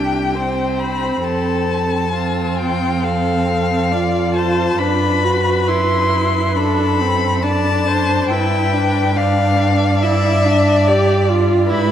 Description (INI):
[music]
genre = classical, slow romantic movement for string quartet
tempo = 68 BPM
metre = 4/4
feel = rubato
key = unclear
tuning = A4 = 440 Hz
[part]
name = dark violin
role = melody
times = 0.0-11.9 s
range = D5 to C6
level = -20 LUFS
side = left 5 dB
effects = none
[part]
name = rich violin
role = second line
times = 0.0-11.9 s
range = F4 to D5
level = -21 LUFS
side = left 1 dB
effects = none
[part]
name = warm viola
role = accompaniment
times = 0.0-11.9 s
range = C4 to G4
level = -20 LUFS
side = equal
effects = none
[part]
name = dark cello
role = bass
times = 0.0-11.9 s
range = C2 to G#2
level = -20 LUFS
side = right 2 dB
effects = none
[sound]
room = wet cathedral reverb, RT60 6.4 s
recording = in a vast, echoing space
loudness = -14 LUFS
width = side -10 dB against mid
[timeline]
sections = 0.0-11.9 A section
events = none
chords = 0.0 C5; 1.2 F; 4.8 D7/F#; 8.3 G7